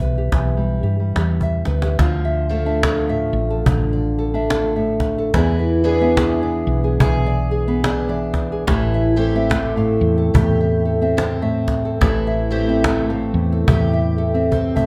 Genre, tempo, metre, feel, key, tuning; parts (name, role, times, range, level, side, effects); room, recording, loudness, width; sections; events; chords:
acoustic folk duo or small band; 72 BPM; 4/4; swing 60% on 8ths; D dorian; A4 = 442 Hz
nylon-string guitar; accompaniment; 0.0-14.9 s; A2 to F5; -23 LUFS; equal
woody fretless electric bass; bass; 0.0-14.9 s; A1 to G2; -23 LUFS; equal
cajon; percussion; 0.2-14.9 s; -23 LUFS; equal
picked twelve-string acoustic guitar; arpeggios; 2.0-14.9 s; E3 to G#4; -26 LUFS; equal
light reverb; -18 LUFS; mono
0.0-2.0 A section; 2.0-14.9 B section
drum fill 1.4-2.0, 14.5-14.9
0.0 Em; 2.0 Dmadd9; 5.3 E7; 8.7 Am7